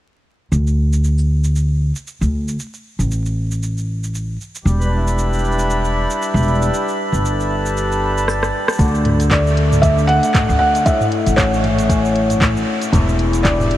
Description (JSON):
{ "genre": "folktronica", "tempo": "116 BPM", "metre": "4/4", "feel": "swing 56% on 16ths", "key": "D major", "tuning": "A4 = 439 Hz", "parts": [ { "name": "upright bass", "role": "bass", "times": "0.5-13.8 s", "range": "E1 to D2", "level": "-17 LUFS", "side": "equal", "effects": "none" }, { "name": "organic electronic drum kit", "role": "drums", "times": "0.5-13.8 s", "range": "handclaps, hi-hat, rim click, shaker, toms", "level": "-22 LUFS", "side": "equal", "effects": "none" }, { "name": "hand-pumped harmonium", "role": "sustained chords", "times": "4.6-8.8 s", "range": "G3 to B4", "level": "-22 LUFS", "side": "equal", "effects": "none" }, { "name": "cimbalom", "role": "arpeggios", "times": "8.8-13.8 s", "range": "E2 to F#4", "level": "-20 LUFS", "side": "left 3 dB", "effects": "tape echo" }, { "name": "electronic kick drum", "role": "drums", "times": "8.8-13.6 s", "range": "none", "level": "-17 LUFS", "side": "equal", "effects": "none" }, { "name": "felt-muted upright piano", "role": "melody", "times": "9.3-13.8 s", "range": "C#5 to F#5", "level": "-19 LUFS", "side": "equal", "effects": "tape echo" } ], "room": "moderate huge ambient reverb, RT60 7.8 s", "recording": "dreamy mix soaked in reverb, vinyl crackle", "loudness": "-15 LUFS", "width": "side -13 dB against mid", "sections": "0.5-8.8 A section; 8.8-13.8 B section", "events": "drum fill 8.3-8.8", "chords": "0.5 N.C.; 4.7 Em7; 6.7 Gadd9; 8.8 D; 10.9 A6; 12.9 Em7" }